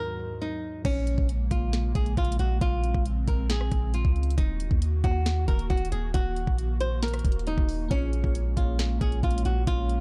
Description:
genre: hip hop, trap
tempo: 136 BPM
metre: 4/4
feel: half-time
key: Bb minor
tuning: A4 = 441 Hz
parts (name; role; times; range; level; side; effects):
- flamenco guitar; melody; 0.0-10.0 s; Db4 to C5; -35 LUFS; equal; delay
- glassy digital keys; accompaniment; 0.0-0.9, 7.9-10.0 s; Eb3 to Db5; -42 LUFS; equal; chorus
- airy breathy pad; sustained chords; 0.0-10.0 s; Eb2 to Gb4; -40 LUFS; equal; chorus
- warm 808-style bass; bass; 0.8-10.0 s; Eb1 to Eb2; -29 LUFS; equal; none
- trap drum kit; drums; 0.8-10.0 s; crash cymbal, hi-hat, kick drum, rim click, snare drum; -29 LUFS; equal; none
room: little or no reverb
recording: dark, warm production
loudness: -26 LUFS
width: mono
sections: 0.8-10.0 A section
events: break 0.0-0.8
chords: 0.0 Ebm; 0.8 Bbm7; 4.4 Ebm; 7.9 Bbm7

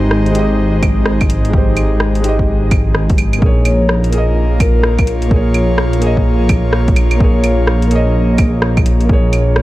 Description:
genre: future garage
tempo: 127 BPM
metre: 4/4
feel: swing 64% on 16ths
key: Bb dorian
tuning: A4 = 440 Hz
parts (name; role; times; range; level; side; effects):
- felt-muted upright piano; accompaniment; 0.0-9.6 s; Ab3 to Eb5; -20 LUFS; right 1 dB; sidechain pumping, analog delay
- airy breathy pad; sustained chords; 0.0-9.6 s; Ab3 to Db5; -20 LUFS; left 1 dB; chorus, sidechain pumping
- dark detuned saw bass; bass; 0.0-9.6 s; Ab1 to Bb1; -14 LUFS; equal; tube saturation
- deep house drum kit; drums; 0.1-9.6 s; claves, hi-hat, rim click; -20 LUFS; right 1 dB; overdrive, studio reverb
- electronic kick drum; drums; 0.8-9.2 s; none; -14 LUFS; equal; overdrive, studio reverb
- vibraphone with soft mallets; melody; 3.7-5.1 s; Bb4 to Db5; -23 LUFS; left 3 dB; analog delay
room: little or no reverb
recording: none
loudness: -11 LUFS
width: side -16 dB against mid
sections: 0.0-9.6 A section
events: none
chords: 0.0 Abmaj7; 3.4 Bbm7

